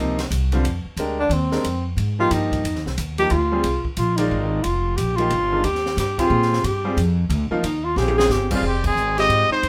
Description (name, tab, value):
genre	modal jazz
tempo	180 BPM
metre	3/4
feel	swing 63% on 8ths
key	F dorian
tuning	A4 = 439 Hz
part	clear grand piano	accompaniment	0.0-9.6 s	C3 to D5	-27 LUFS	equal	none
part	upright bass	bass	0.0-9.7 s	F1 to Bb2	-25 LUFS	equal	none
part	open jazz drum kit	drums	0.2-9.7 s	crash cymbal, hi-hat, kick drum, ride cymbal, snare drum, toms	-33 LUFS	equal	none
part	breathy tenor saxophone	second line	1.2-9.7 s	Ab3 to Ab4	-24 LUFS	equal	none
part	bright trumpet	melody	8.5-9.7 s	F4 to Eb5	-21 LUFS	equal	none
room	moderate studio ambience, RT60 0.5 s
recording	none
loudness	-21 LUFS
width	mono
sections	0.6-8.6 A section; 8.6-9.7 B section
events	tenor saxophone solo 0.6-8.6; drum fill 8.0-8.3; band accent 8.8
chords	0.0 Ab (rootless); 0.6 Fm9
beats	0.31 | 0.64 0.97 1.31 | 1.64 1.98 2.31 | 2.64 2.97 3.31 | 3.64 3.97 4.30 | 4.64 4.97 5.30 | 5.64 5.97 6.30 | 6.63 6.97 7.30 | 7.63 7.96 8.30 | 8.63 8.96 9.30 | 9.63